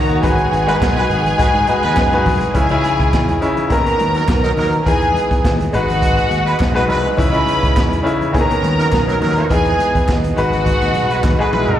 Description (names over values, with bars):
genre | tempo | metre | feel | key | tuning
disco | 104 BPM | 4/4 | straight | unclear | A4 = 439 Hz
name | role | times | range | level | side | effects
clear studio string section | second line | 0.0-11.5 s | F#4 to B5 | -20 LUFS | right 1 dB | slapback echo
clear baby grand piano | accompaniment | 0.0-11.8 s | C#3 to D#5 | -18 LUFS | left 2 dB | slapback echo
mellow French horn section | sustained chords | 0.0-11.8 s | C#3 to D#5 | -26 LUFS | right 4 dB | none
fingered electric bass | bass | 0.1-11.8 s | G#1 to G#2 | -20 LUFS | equal | none
vintage drum kit | drums | 0.1-11.8 s | hi-hat, kick drum, snare drum, toms | -19 LUFS | equal | none
congas | percussion | 0.2-11.7 s | none | -29 LUFS | left 3 dB | none
clear horn section | stabs | 0.7-11.8 s | F#3 to B4 | -22 LUFS | right 3 dB | slapback echo
group handclap | percussion | 0.8-11.4 s | none | -33 LUFS | right 4 dB | none
room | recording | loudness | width
light reverb | live gig heard through the venue's PA, recital hall reverb | -13 LUFS | side -11 dB against mid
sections
0.0-2.5 A section; 2.5-11.8 B section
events
band accent 0.2-2.5; drum fill 11.2-11.8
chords
0.2 G#m7; 2.5 C#madd9; 3.7 Bmaj7/D#; 4.9 Emaj7; 5.7 G#m7; 7.2 C#madd9; 8.3 Bmaj7/D#; 9.5 Emaj7; 10.4 G#m7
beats
| 0.23 0.81 1.39 1.97 | 2.55 3.12 3.70 4.28 | 4.86 5.44 6.02 6.60 | 7.18 7.76 8.34 8.92 | 9.50 10.08 10.66 11.23